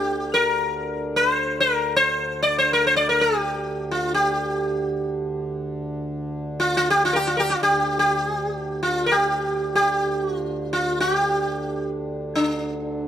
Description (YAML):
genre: indian classical, Hindustani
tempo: free time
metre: none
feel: none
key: D raga malkauns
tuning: A4 = 441 Hz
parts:
  - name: sitar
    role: melody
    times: 0.0-13.1 s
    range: D4 to D5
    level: -20 LUFS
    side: equal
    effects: none
  - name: pedal harmonium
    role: drone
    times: 0.0-13.1 s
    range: D2 to D3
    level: -30 LUFS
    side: equal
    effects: none
room: light reverb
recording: close, detailed microphones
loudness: -20 LUFS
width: side -10 dB against mid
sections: 0.0-13.1 A section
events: none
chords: none